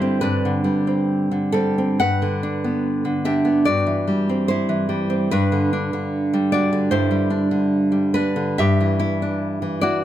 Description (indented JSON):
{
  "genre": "romantic piece for solo classical guitar",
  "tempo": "65-76 BPM",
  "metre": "4/4",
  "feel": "rubato",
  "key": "unclear",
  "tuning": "A4 = 440 Hz",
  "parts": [
    { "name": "nylon-string guitar", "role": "solo", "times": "0.0-10.0 s", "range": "G2 to F#5", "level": "-18 LUFS", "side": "equal", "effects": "none" }
  ],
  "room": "light reverb",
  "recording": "close, detailed microphones",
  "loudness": "-18 LUFS",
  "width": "side -12 dB against mid",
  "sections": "0.0-10.0 A section",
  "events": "none",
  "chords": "0.0 D5/G; 2.0 G; 3.7 C/G; 5.3 Em7/G"
}